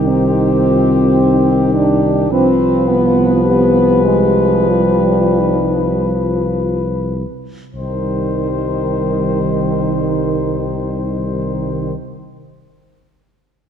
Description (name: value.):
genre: classical, hymn-like piece for brass band.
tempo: 35-54 BPM.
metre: 4/4.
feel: rubato.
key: C minor.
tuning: A4 = 440 Hz.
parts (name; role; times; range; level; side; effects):
warm flugelhorn; melody; 0.0-11.9 s; G4 to C5; -20 LUFS; left 7 dB; none.
warm French horn section; second line; 0.0-11.9 s; Eb3 to D4; -17 LUFS; right 3 dB; none.
mellow euphonium; accompaniment; 0.0-11.9 s; G3 to G4; -23 LUFS; left 4 dB; none.
warm trombone; accompaniment; 0.0-11.9 s; Eb3 to F3; -21 LUFS; right 3 dB; none.
dark tuba; bass; 0.0-11.9 s; C2; -19 LUFS; equal; none.
room: wet scoring stage reverb, RT60 1.8 s.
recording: none.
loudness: -13 LUFS.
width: side -8 dB against mid.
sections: 0.0-7.7 A section; 7.7-13.7 B section.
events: slowing down 0.0-7.7.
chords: 0.0 Cm; 2.3 G7/C; 7.7 Cm.